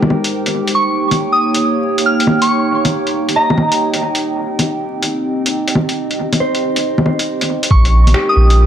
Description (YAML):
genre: future garage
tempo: 138 BPM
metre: 4/4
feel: swing 65% on 16ths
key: unclear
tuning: A4 = 439 Hz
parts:
  - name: mellow electric guitar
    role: accompaniment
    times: 0.0-0.1, 3.4-8.7 s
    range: G4 to Eb5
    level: -22 LUFS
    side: right 1 dB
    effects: sidechain pumping, analog delay
  - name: warbly tape-like pad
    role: sustained chords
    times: 0.0-8.7 s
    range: Ab3 to G5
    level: -18 LUFS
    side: right 1 dB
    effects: chorus, built-in reverb, sidechain pumping
  - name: lo-fi sampler-style drum kit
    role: drums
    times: 0.0-8.6 s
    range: bongos, finger snaps, hi-hat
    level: -17 LUFS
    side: left 1 dB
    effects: studio reverb, dub echo
  - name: soft synth bell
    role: melody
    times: 0.7-3.7, 7.7-8.5 s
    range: Bb5 to F6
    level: -16 LUFS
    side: right 1 dB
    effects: chorus, vintage 12-bit sampler grit, analog delay
  - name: soft dub sub bass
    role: bass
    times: 7.7-8.7 s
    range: Bb1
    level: -9 LUFS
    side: equal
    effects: sidechain pumping
  - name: electronic kick drum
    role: drums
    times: 7.7-7.8 s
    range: none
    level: -11 LUFS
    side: equal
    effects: studio reverb
room: moderate spring reverb, RT60 1.5 s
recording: echo-heavy mix, vinyl crackle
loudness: -12 LUFS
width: side -10 dB against mid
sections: 0.0-7.7 A section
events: none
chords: 0.0 Abmaj7; 0.8 Eb7; 4.2 Cm; 7.7 Bbm7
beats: 0.32 | 0.75 1.19 1.62 2.06 | 2.49 2.93 3.36 3.80 | 4.23 4.67 5.10 5.54 | 5.97 6.41 6.84 7.28 | 7.71 8.14 8.58